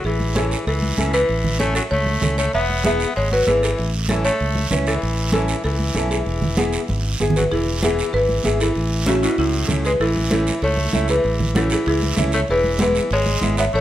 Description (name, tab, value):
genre	latin, cumbia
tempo	193 BPM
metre	4/4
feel	straight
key	E major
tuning	A4 = 441 Hz
part	buzzing marimba with medium mallets	melody	0.0-13.8 s	C#4 to E5	-22 LUFS	equal	none
part	raspy tenor saxophone	second line	0.0-13.8 s	A2 to B3	-26 LUFS	left 2 dB	none
part	fingered electric bass	bass	0.0-13.8 s	E1 to C#2	-22 LUFS	equal	none
part	guiro	percussion	0.0-13.8 s	none	-29 LUFS	right 5 dB	none
part	congas	percussion	0.1-13.8 s	none	-27 LUFS	right 1 dB	none
part	nylon-string guitar	accompaniment	0.3-13.6 s	G#3 to B4	-24 LUFS	equal	none
room	moderate large studio reverb, RT60 1.3 s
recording	none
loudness	-17 LUFS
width	side -12 dB against mid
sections	0.0-7.5 A section; 7.5-13.8 A section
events	drum fill 6.9-7.5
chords	0.0 A; 2.5 E; 3.8 A; 6.3 E; 8.8 A; 12.5 E